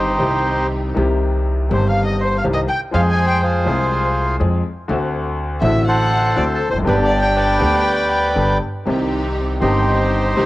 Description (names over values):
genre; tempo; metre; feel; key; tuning
tango; 121 BPM; 4/4; rubato; C harmonic minor; A4 = 440 Hz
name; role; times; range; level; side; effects
bandoneon; melody; 0.0-10.5 s; D4 to Ab5; -19 LUFS; equal; cassette tape
warm violin; second line; 0.0-10.5 s; A4 to Ab5; -24 LUFS; left 2 dB; cassette tape
clear concert grand piano; accompaniment; 0.0-10.5 s; G1 to Ab4; -21 LUFS; left 2 dB; cassette tape
rich studio string section; stabs; 0.0-0.9, 8.9-10.5 s; C4 to G4; -26 LUFS; right 4 dB; cassette tape
upright bass; bass; 0.0-10.5 s; E1 to F2; -20 LUFS; right 1 dB; none
room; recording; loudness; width
light reverb, studio reverb; home recording on cassette; -15 LUFS; side -17 dB against mid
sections
1.0-10.5 A section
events
none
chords
0.0 Cm; 2.9 Fm; 4.9 D7; 6.9 G; 8.9 Cm